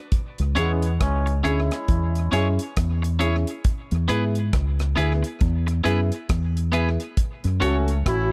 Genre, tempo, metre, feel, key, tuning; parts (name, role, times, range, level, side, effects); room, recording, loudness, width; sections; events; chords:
roots reggae; 68 BPM; 4/4; swing 61% on 16ths; E mixolydian; A4 = 443 Hz
deep reggae drum kit; drums; 0.1-8.3 s; hi-hat, kick drum, rim click; -27 LUFS; equal
deep dub fingered electric bass; bass; 0.4-8.3 s; A1 to G#2; -24 LUFS; equal
muted trombone section; second line; 0.6-8.3 s; E3 to E4; -32 LUFS; equal; tape echo
clean electric guitar; accompaniment; 0.6-7.8 s; B3 to C#5; -30 LUFS; equal; tape echo
dark upright piano; stabs; 0.6-7.9 s; A3 to G#4; -31 LUFS; equal
mellow tonewheel organ; melody; 8.1-8.3 s; F#4; -26 LUFS; equal; chorus vibrato, stopped rotary speaker, tube saturation
small room ambience; -23 LUFS; mono
0.0-8.3 A section
0.1 C#m; 3.6 E; 7.2 F#m